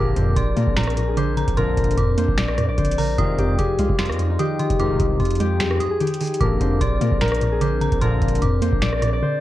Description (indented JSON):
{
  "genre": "hip hop, trap",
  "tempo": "149 BPM",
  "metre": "4/4",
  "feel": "half-time",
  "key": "unclear",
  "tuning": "A4 = 438 Hz",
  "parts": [
    { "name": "Celtic harp", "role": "melody", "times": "0.0-9.4 s", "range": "Eb4 to D5", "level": "-24 LUFS", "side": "left 3 dB", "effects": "ping-pong delay" },
    { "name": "dark detuned synth bell", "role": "second line", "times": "0.0-9.4 s", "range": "Bb5 to Eb6", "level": "-31 LUFS", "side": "right 2 dB", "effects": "chorus, ping-pong delay" },
    { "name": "warbly dusty pluck", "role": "accompaniment", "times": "0.0-9.4 s", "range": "F2 to Bb3", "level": "-25 LUFS", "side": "right 1 dB", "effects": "chorus" },
    { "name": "hollow soft pad", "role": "sustained chords", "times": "0.0-9.4 s", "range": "F3 to Bb4", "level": "-32 LUFS", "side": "equal", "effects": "chorus" },
    { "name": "analog synth brass", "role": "stabs", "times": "0.0-8.4 s", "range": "F2 to Eb3", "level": "-28 LUFS", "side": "left 1 dB", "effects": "chorus, ping-pong delay" },
    { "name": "long sustained 808-style bass", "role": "bass", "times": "0.0-9.2 s", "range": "Eb1 to Bb2", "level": "-23 LUFS", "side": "equal", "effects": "none" },
    { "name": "booming analog drum machine", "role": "drums", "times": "0.2-9.1 s", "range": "finger snaps, hi-hat, kick drum, rim click, snare drum", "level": "-24 LUFS", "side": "equal", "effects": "none" }
  ],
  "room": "digital ambience",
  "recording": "worn, warbling old tape, cassette tape, warbly pitch drift",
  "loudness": "-18 LUFS",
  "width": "side -14 dB against mid",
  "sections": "0.0-9.4 A section",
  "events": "silent gap 9.2",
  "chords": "0.0 Bbadd9; 3.2 Fm7; 6.4 Bbadd9"
}